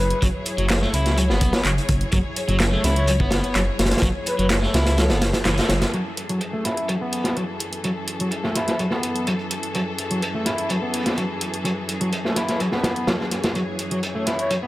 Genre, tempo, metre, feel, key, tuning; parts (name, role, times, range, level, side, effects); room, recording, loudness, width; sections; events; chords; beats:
breakbeat, breaks; 126 BPM; 4/4; straight; F# minor; A4 = 440 Hz
breathy flute-like synth lead; melody; 0.0-5.2, 14.4-14.5 s; A4 to C#5; -29 LUFS; left 1 dB; chorus, AM radio sound, digital delay
warm studio string section; sustained chords; 0.0-14.7 s; F#2 to C#5; -29 LUFS; left 1 dB; vintage 12-bit sampler grit, sidechain pumping
dark detuned saw bass; bass; 0.0-5.8 s; F#1 to C#2; -22 LUFS; equal
punchy analog drum machine; drums; 0.1-14.6 s; handclaps, hi-hat; -29 LUFS; equal
crunchy overdriven guitar; riff; 0.2-14.7 s; E3 to E4; -26 LUFS; equal; tube saturation, vintage 12-bit sampler grit, low-pass filter, digital delay
crunchy breakbeat drum kit; drums; 0.2-14.6 s; hi-hat, kick drum, snare drum; -24 LUFS; equal; low-pass filter on kick, low-pass filter on hats, low-pass filter on snare, low-pass filter on room
light reverb, studio ambience; -20 LUFS; side -17 dB against mid
0.0-5.9 A section; 5.9-14.7 B section
band accent 5.5
0.0 F#7sus2; 5.9 F#m9
| 0.22 0.70 1.17 1.65 | 2.13 2.60 3.08 3.55 | 4.03 4.51 4.98 5.46 | 5.93 6.41 6.89 7.36 | 7.84 8.32 8.79 9.27 | 9.74 10.22 10.70 11.17 | 11.65 12.13 12.60 13.08 | 13.55 14.03 14.51